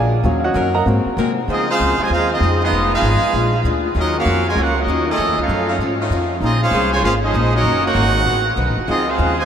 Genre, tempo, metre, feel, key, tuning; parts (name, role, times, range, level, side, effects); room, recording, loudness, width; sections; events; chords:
jazz, big band swing; 195 BPM; 4/4; swing 63% on 8ths; Db major; A4 = 438 Hz
clear concert grand piano; accompaniment; 0.0-1.1 s; Gb3 to Bb5; -22 LUFS; right 1 dB
picked steel-string acoustic guitar; accompaniment; 0.0-9.4 s; Ab2 to C5; -25 LUFS; left 6 dB
upright bass; bass; 0.0-9.4 s; F1 to Db3; -20 LUFS; equal
clear saxophone section; sustained chords; 0.5-9.4 s; Db3 to C5; -30 LUFS; equal
bright trumpet section; melody; 1.5-9.4 s; Cb4 to Ab5; -18 LUFS; right 1 dB
bright trombone section; second line; 1.5-9.4 s; C3 to Gb4; -22 LUFS; right 3 dB
wet huge ambient reverb, RT60 8.3 s; in a vast, echoing space; -15 LUFS; side -8 dB against mid
0.0-1.5 A section; 1.5-9.4 B section
grand piano solo 0.0-1.5
0.2 Ebm7; 0.9 Ab9; 1.5 Dbmaj9; 2.7 Fm7b5; 3.3 Bb7; 4.0 Ebm9; 5.2 F7alt; 6.4 Bbm9; 7.6 Ebm7; 8.3 D13; 8.9 Dbmaj9